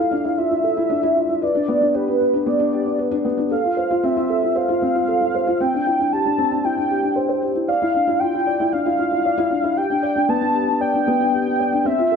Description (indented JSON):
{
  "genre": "electronica",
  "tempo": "115 BPM",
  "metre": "4/4",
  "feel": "straight",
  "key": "unclear",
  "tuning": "A4 = 440 Hz",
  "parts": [
    { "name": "warm velvety synth lead", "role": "melody", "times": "0.0-12.2 s", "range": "B4 to A5", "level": "-20 LUFS", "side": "right 1 dB", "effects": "chorus" },
    { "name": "felt-muted upright piano", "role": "riff", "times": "0.0-12.2 s", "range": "B3 to D5", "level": "-20 LUFS", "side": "left 1 dB", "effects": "ping-pong delay" }
  ],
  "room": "moderate echo chamber reverb, RT60 1.9 s, small room ambience",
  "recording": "none",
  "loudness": "-17 LUFS",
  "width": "side -6 dB against mid",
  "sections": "0.0-12.2 A section",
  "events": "none",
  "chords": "0.0 Dmadd9; 1.4 G; 3.5 F; 5.6 Cadd9; 7.7 Dmadd9; 9.8 G"
}